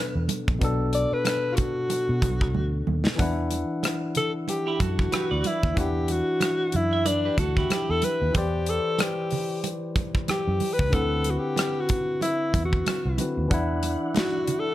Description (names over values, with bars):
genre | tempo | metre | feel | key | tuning
lush 1970s-style soul | 93 BPM | 4/4 | swing 58% on 16ths | E minor | A4 = 440 Hz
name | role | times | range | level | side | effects
mellow alto saxophone | melody | 0.0-14.7 s | D4 to D5 | -26 LUFS | left 1 dB | none
barky tine electric piano | accompaniment | 0.0-14.7 s | B2 to F#5 | -30 LUFS | left 2 dB | none
vintage muted fingered electric bass | bass | 0.2-13.9 s | A#1 to B2 | -27 LUFS | right 1 dB | none
modern studio drum kit | drums | 0.3-14.7 s | hi-hat, kick drum, rim click, snare drum | -27 LUFS | equal | none
congas | percussion | 0.3-14.7 s | none | -34 LUFS | right 7 dB | none
clean electric guitar | riff | 4.7-8.3 s | E4 to E5 | -31 LUFS | right 7 dB | none
tonewheel organ | sustained chords | 13.5-14.7 s | E3 to F#5 | -34 LUFS | right 4 dB | chorus vibrato, slow rotary speaker
room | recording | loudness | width
light reverb | none | -22 LUFS | side -14 dB against mid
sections
0.0-3.2 A section; 3.2-14.7 B section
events
drum fill 2.5-3.2; alto saxophone solo 3.2-14.7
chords
0.0 Bm7; 3.2 Em9; 8.4 Am11 (rootless); 10.9 D13; 13.5 E7sus2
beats
| 0.62 1.26 1.91 2.55 | 3.19 3.84 4.48 5.13 | 5.77 6.42 7.06 7.71 | 8.35 9.00 9.64 10.29 | 10.93 11.58 12.22 12.87 | 13.52 14.16